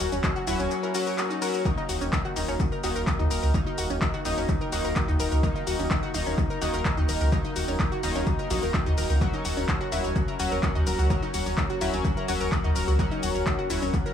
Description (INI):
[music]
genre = melodic techno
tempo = 127 BPM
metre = 4/4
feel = straight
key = Eb minor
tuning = A4 = 442 Hz
[part]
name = deep dark ambient pad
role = sustained chords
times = 0.0-14.1 s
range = Gb4 to Bb5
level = -34 LUFS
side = right 1 dB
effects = chorus, built-in reverb, sidechain pumping
[part]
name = analog pluck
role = arpeggios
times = 0.0-14.1 s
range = Db4 to Bb5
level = -32 LUFS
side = equal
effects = chorus, sidechain pumping, analog delay
[part]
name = sync-sweep polysynth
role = stabs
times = 0.0-14.1 s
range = Eb3 to Gb4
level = -31 LUFS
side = left 3 dB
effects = chorus, sidechain pumping, analog delay
[part]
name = round analog bass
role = bass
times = 0.0-13.9 s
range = Eb1 to Eb2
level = -27 LUFS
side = equal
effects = sidechain pumping
[part]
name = punchy analog drum machine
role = drums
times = 0.0-14.1 s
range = handclaps, hi-hat, shaker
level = -33 LUFS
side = left 2 dB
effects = analog delay
[part]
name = electronic kick drum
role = drums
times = 0.2-14.0 s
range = none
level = -27 LUFS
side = equal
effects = overdrive
[sound]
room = light reverb, digital ambience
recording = echo-heavy mix, small room ambience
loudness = -23 LUFS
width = side -9 dB against mid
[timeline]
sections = 0.0-14.1 A section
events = none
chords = 0.0 Gb/Eb; 1.7 Ebm; 9.2 Gb/Eb